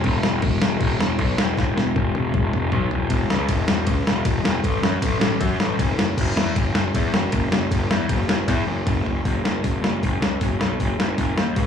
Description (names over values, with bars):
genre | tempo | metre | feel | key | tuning
punk rock | 156 BPM | 4/4 | straight | unclear | A4 = 441 Hz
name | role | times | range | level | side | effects
fuzz picked electric bass | bass | 0.0-11.7 s | E1 to F#2 | -21 LUFS | left 1 dB | overdrive
boom bap sampler-style drum kit | drums | 0.0-11.7 s | crash cymbal, hi-hat, kick drum, ride cymbal, snare drum, toms | -22 LUFS | left 1 dB | slapback echo
room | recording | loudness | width
little or no reverb | live gig heard through the venue's PA, club reverb, small room ambience | -19 LUFS | side -8 dB against mid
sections
0.0-3.1 A section; 3.1-9.2 B section; 9.2-11.7 C section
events
drum fill 1.6-3.1, 8.5-9.2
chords
none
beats
| 0.04 0.42 0.81 1.19 | 1.57 1.95 2.34 2.72 | 3.10 3.48 3.87 4.25 | 4.63 5.02 5.40 5.78 | 6.17 6.55 6.94 7.32 | 7.70 8.09 8.47 8.86 | 9.24 9.63 10.01 10.40 | 10.79 11.17 11.56